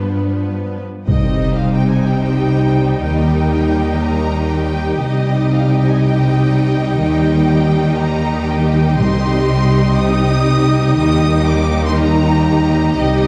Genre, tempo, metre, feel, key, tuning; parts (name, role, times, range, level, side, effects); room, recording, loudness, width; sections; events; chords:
cinematic, epic orchestral film score; 121 BPM; 4/4; straight; C minor; A4 = 440 Hz
clear symphonic violin section; melody; 0.0-13.3 s; B4 to Eb6; -27 LUFS; equal
warm symphonic violin section; second line; 0.0-13.3 s; D4 to Eb5; -29 LUFS; equal
rich symphonic viola section; accompaniment; 0.0-13.3 s; F3 to Eb4; -24 LUFS; equal
dark French horn section; sustained chords; 0.0-13.3 s; G3 to Eb4; -26 LUFS; equal
rich symphonic cello section; bass; 0.0-13.3 s; G2 to Eb3; -20 LUFS; equal
clear symphonic string section; sustained chords; 1.1-13.3 s; Eb4 to G5; -29 LUFS; equal
clear symphonic double bass section; bass; 1.1-13.3 s; C2 to Eb2; -19 LUFS; equal
timpani; percussion; 1.1-1.8, 9.0-9.7 s; C3; -24 LUFS; equal
impact; sound effects; 1.1-3.1 s; -25 LUFS; equal
wet scoring stage reverb, RT60 1.7 s; dark, warm production; -15 LUFS; mono
0.0-1.1 A section; 1.1-13.3 B section
impact 1.1-3.1
0.0 G7; 1.1 Cm; 3.1 Eb; 5.0 Cm; 7.0 Eb; 9.0 Cm; 11.0 Eb